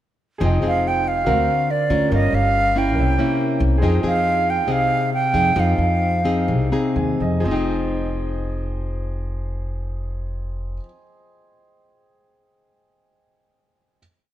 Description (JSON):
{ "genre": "bossa nova", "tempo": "119-141 BPM", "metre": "4/4", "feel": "straight", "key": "F minor", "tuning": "A4 = 440 Hz", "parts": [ { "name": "clear baby grand piano", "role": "accompaniment", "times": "0.4-14.0 s", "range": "F#4 to Bb5", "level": "-31 LUFS", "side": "right 2 dB", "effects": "none" }, { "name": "nylon-string guitar", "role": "accompaniment", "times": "0.4-11.1 s", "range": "C3 to A#4", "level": "-23 LUFS", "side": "left 2 dB", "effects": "none" }, { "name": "upright bass", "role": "bass", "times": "0.4-10.8 s", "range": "F1 to F2", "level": "-22 LUFS", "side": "equal", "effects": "none" }, { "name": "breathy silver concert flute", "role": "melody", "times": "0.7-7.0 s", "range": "D5 to G5", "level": "-21 LUFS", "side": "right 2 dB", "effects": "none" } ], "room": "moderate plate reverb, RT60 2.8 s", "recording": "heard from further back in the room", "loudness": "-18 LUFS", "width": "side -12 dB against mid", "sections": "0.4-7.5 A section; 7.5-11.5 final chord", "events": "slowing down 3.8-7.5; grand piano fill 6.5-7.5", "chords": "0.4 Fm7; 1.3 D7alt; 2.1 Gm7b5; 3.0 C7b9; 3.8 Fm7" }